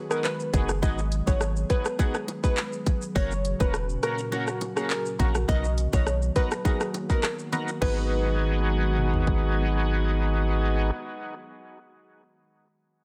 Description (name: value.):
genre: dancehall.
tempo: 103 BPM.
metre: 4/4.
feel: straight.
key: G# minor.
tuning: A4 = 442 Hz.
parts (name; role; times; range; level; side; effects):
glassy FM pad; sustained chords; 0.0-10.9 s; A#2 to G#4; -38 LUFS; equal; ensemble chorus, built-in reverb, sidechain pumping.
glassy wavetable pluck; melody; 0.1-9.5 s; F#4 to D#5; -34 LUFS; equal; chorus, analog delay.
overdriven tonewheel organ; accompaniment; 0.1-10.9 s; A#3 to A#4; -33 LUFS; equal; chorus vibrato, slow rotary speaker, sidechain pumping, analog delay.
island pop drum kit; drums; 0.1-9.4 s; crash cymbal, handclaps, hi-hat, kick drum, rim click, shaker, toms; -29 LUFS; equal; vintage 12-bit sampler grit.
punchy sub bass; bass; 0.5-10.9 s; E1 to B1; -28 LUFS; equal; none.
bongos; percussion; 0.5-8.1 s; none; -39 LUFS; equal; none.
room: light reverb, digital ambience.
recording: echo-heavy mix.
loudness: -26 LUFS.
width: mono.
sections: 0.0-7.8 A section; 7.8-10.1 B section.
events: none.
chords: 0.0 G#m7; 3.2 F#; 5.5 Bmaj7; 7.8 G#m7.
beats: 0.24 | 0.83 1.41 1.99 2.58 | 3.16 3.74 4.32 4.91 | 5.49 6.07 6.65 7.24 | 7.82 8.40 8.98 9.56.